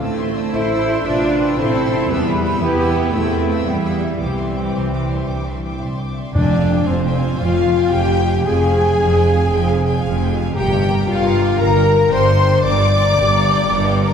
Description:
cinematic, heroic adventure film score; 114 BPM (dotted quarters); 12/8; straight; F dorian from 6.3 s; A4 = 440 Hz
warm studio violin section; melody; 0.0-14.1 s; C5 to E6; -26 LUFS; left 2 dB
clear studio violin section; second line; 0.0-14.1 s; Bb4 to C6; -30 LUFS; left 2 dB
mellow clarinet; second line; 0.0-5.8 s; G3 to A4; -27 LUFS; left 2 dB
silver concert flute; second line; 0.0-14.1 s; C5 to D6; -28 LUFS; left 1 dB
clear studio viola section; accompaniment; 0.0-14.1 s; G3 to D5; -26 LUFS; right 1 dB
mellow French horn section; sustained chords; 0.0-14.1 s; C4 to E5; -20 LUFS; left 4 dB
concert harp; arpeggios; 0.0-14.1 s; F2 to G5; -28 LUFS; left 1 dB
clear trumpet section; stabs; 0.0-5.8 s; B3 to C5; -26 LUFS; right 2 dB
clear symphonic cello section; bass; 0.0-14.1 s; F2 to E4; -21 LUFS; right 2 dB
rich symphonic double bass section; bass; 0.0-14.1 s; F1 to E2; -21 LUFS; right 2 dB
dark cor anglais; second line; 6.3-14.1 s; C4 to D5; -28 LUFS; right 1 dB
timpani; percussion; 6.4-6.8 s; F2; -20 LUFS; right 1 dB
wet concert hall reverb, RT60 2.5 s; heard from further back in the room; -14 LUFS; side -7 dB against mid
0.0-6.3 A section; 6.3-14.1 B section
0.0 Am; 2.1 Em; 4.2 Cadd9; 6.3 Fmadd9; 10.6 Gm
| 0.02 0.54 1.06 1.58 | 2.10 2.62 3.15 3.67 | 4.21 4.74 5.28 5.81 | 6.34 6.87 7.40 7.92 | 8.45 8.97 9.50 10.03 | 10.55 11.07 11.60 12.12 | 12.64 13.16 13.69

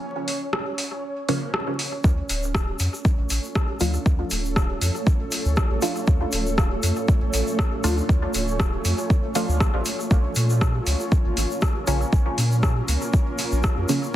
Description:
dub techno; 119 BPM; 4/4; swing 53% on 16ths; D harmonic minor; A4 = 444 Hz
bubbling stepped-filter texture; texture; 0.0-14.2 s; C#4 to C#5; -33 LUFS; equal; chorus, built-in reverb, sidechain pumping
deep house drum kit; drums; 0.3-14.0 s; hi-hat, rim click; -28 LUFS; equal; overdrive, dub echo
filtered dub chord stab; stabs; 1.3-14.0 s; Db3 to F4; -28 LUFS; right 1 dB; phaser, cassette tape, sidechain pumping, dub echo
granular cloud pad; sustained chords; 3.3-14.2 s; A3 to Bb4; -30 LUFS; right 1 dB; built-in reverb, sidechain pumping
soft dub sub bass; bass; 2.0-13.8 s; D1 to Bb2; -24 LUFS; equal; sidechain pumping
electronic kick drum; drums; 2.0-13.7 s; -20 LUFS; equal; overdrive
egg shaker; percussion; 2.0-14.1 s; -35 LUFS; left 2 dB
light reverb, digital ambience; dense, heavily limited modern master, vinyl crackle; -20 LUFS; side -13 dB against mid
0.0-14.2 A section
break 0.0-2.0
0.0 N.C.; 2.0 Dm; 10.1 Bbm
| 0.03 0.53 1.03 1.54 | 2.04 2.55 3.05 3.55 | 4.06 4.56 5.07 5.57 | 6.08 6.58 7.08 7.59 | 8.09 8.60 9.10 9.61 | 10.11 10.61 11.12 11.62 | 12.13 12.63 13.13 13.64 | 14.14

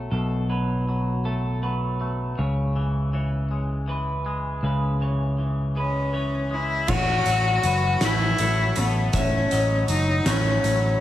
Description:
post-rock; 53 BPM (dotted quarters); 6/8; straight; A lydian; A4 = 440 Hz
electric guitar through a small old amp; arpeggios; 0.0-11.0 s; A4 to E5; -33 LUFS; right 3 dB; lush chorus, tape echo
twangy electric guitar; arpeggios; 0.0-11.0 s; A2 to A3; -32 LUFS; left 3 dB; wide subtle chorus, tape echo
picked electric bass; bass; 0.0-10.9 s; F#1 to C#2; -24 LUFS; equal
rich cello; melody; 5.8-11.0 s; B3 to F#4; -23 LUFS; left 2 dB; tape echo
glassy FM pad; sustained chords; 7.6-11.0 s; E3 to B5; -37 LUFS; equal
oversized low-tuned drum kit; drums; 6.9-10.8 s; crash cymbal, hi-hat, kick drum, snare drum; -27 LUFS; right 1 dB
light reverb, small room reverb; lossy compression artefacts; -21 LUFS; side -13 dB against mid
0.0-6.9 A section; 6.9-11.0 B section
0.0 B5; 2.4 C#m7; 6.9 A6
| 0.12 1.25 | 2.38 3.51 | 4.64 5.76 | 6.89 8.02 | 9.14 10.27

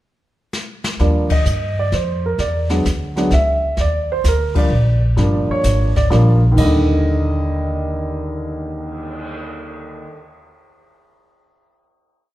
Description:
jazz piano trio; 129 BPM; 3/4; swing 68% on 8ths; Eb major; A4 = 440 Hz
jazz brush drum kit; drums; 0.5-9.3 s; brushed snare drum, crash cymbal, cymbal swell, hi-hat, kick drum, ride cymbal, snare drum; -24 LUFS; left 1 dB
warm grand piano; melody; 1.0-10.2 s; Eb2 to E5; -19 LUFS; right 1 dB
upright bass; bass; 1.0-10.0 s; G1 to G2; -17 LUFS; equal
moderate recital hall reverb, RT60 1.6 s; recorded in a church or concert hall, lossy compression artefacts; -15 LUFS; side -15 dB against mid
0.0-1.0 pickup bar; 1.0-6.6 A section; 6.6-9.4 final chord
drum fill 0.5-1.0; band accent 1.2, 4.5
0.0 N.C.; 1.0 Ebmaj7; 2.4 E7(no3); 3.8 Ebmaj7
0.07 0.54 | 1.00 1.46 1.93 | 2.39 2.85 3.32 | 3.78 4.25 4.71 | 5.18 5.64 6.11 | 6.58 7.04 7.51 | 7.97 8.44 8.90

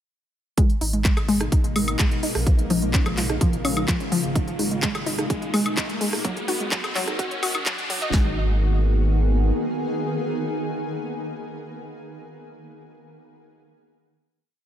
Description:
progressive house; 127 BPM; 4/4; straight; G# dorian; A4 = 440 Hz
shimmering ambient pad; sustained chords; 1.2-11.3 s; B2 to G#4; -29 LUFS; equal; chorus, built-in reverb, sidechain pumping
analog pluck; arpeggios; 0.6-8.4 s; E#3 to D#5; -27 LUFS; left 1 dB; chorus, sidechain pumping, tape echo
house drum kit; drums; 0.6-8.2 s; handclaps, kick drum, snare drum; -21 LUFS; equal
house drum kit; drums; 0.6-8.1 s; handclaps, hi-hat, woodblock; -27 LUFS; equal; sidechain pumping on hats, sidechain pumping on perc
riser; sound effects; 3.3-8.1 s; -34 LUFS; equal
saturated sub bass; bass; 0.8-9.5 s; D#1 to A#1; -24 LUFS; equal; sidechain pumping
electronic congas and rim click; percussion; 0.8-7.6 s; -31 LUFS; right 4 dB; sidechain pumping on perc, sidechain pumping on snare
light reverb; high-pass filter; -20 LUFS; side -10 dB against mid
0.6-8.1 build; 8.1-11.9 final chord
build-up 0.6-8.1; filter sweep on synth arpeggio sound 0.6-8.1; filter sweep 0.6-8.1; riser 3.3-8.1
0.6 G#madd9; 2.5 A#m7; 4.4 G#madd9; 6.2 D#m; 8.1 G#madd9
| 0.58 1.05 1.52 1.99 | 2.47 2.94 3.41 3.88 | 4.36 4.83 5.30 5.77 | 6.25 6.72 7.19 7.66 | 8.13 8.61 9.08 9.55 | 10.03 10.50 10.97

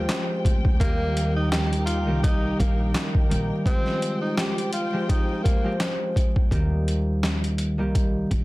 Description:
hip hop, boom-bap hip-hop; 84 BPM; 4/4; swing 56% on 16ths; A4 = 438 Hz
breathy tenor saxophone; melody; 0.0-5.8 s; Bb3 to G4; -30 LUFS; equal; high-pass filter, low-pass filter, tape echo
concert harp; accompaniment; 0.0-8.4 s; Eb3 to G4; -27 LUFS; equal; cassette tape, high-pass filter, low-pass filter
warm studio string section; sustained chords; 0.0-6.5 s; Ab3 to G5; -35 LUFS; left 1 dB; high-pass filter, low-pass filter
upright bass; bass; 0.0-8.4 s; Bb1 to Eb2; -26 LUFS; equal
boom bap sampler-style drum kit; drums; 0.1-8.4 s; handclaps, hi-hat, kick drum, snare drum; -23 LUFS; equal
little or no reverb; dense, heavily limited modern master, vinyl crackle; -21 LUFS; side -20 dB against mid
0.0-6.5 A section; 6.5-8.4 B section
0.0 Fmadd9; 0.8 Eb; 3.7 Fmadd9; 6.5 Eb
0.09 | 0.80 1.52 2.23 2.94 | 3.66 4.37 5.09 5.80 | 6.52 7.23 7.94

